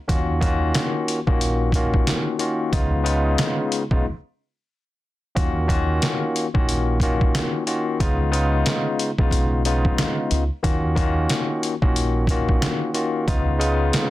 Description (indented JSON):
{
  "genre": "hip hop, boom-bap hip-hop",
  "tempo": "91 BPM",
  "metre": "4/4",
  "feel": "swing 59% on 16ths",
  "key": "Eb minor",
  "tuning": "A4 = 445 Hz",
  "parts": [
    { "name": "barky tine electric piano", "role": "accompaniment", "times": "0.1-14.1 s", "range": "Db3 to Gb4", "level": "-23 LUFS", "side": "left 2 dB", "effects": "medium stereo tremolo" },
    { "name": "deep dub fingered electric bass", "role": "bass", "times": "0.1-13.9 s", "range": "Bb1 to Eb2", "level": "-23 LUFS", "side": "equal", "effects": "none" },
    { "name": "trip hop sampler-style drum kit", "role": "drums", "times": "0.1-14.1 s", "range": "handclaps, hi-hat, kick drum, snare drum", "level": "-22 LUFS", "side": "equal", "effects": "none" }
  ],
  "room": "light reverb",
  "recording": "dense, heavily limited modern master",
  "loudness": "-19 LUFS",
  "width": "side -16 dB against mid",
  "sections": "0.0-14.1 A section",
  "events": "break 4.0-5.4",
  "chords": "0.1 Ebm7; 2.7 Db7; 5.4 Ebm7; 8.0 Db7; 10.6 Ebm7; 13.3 Db7"
}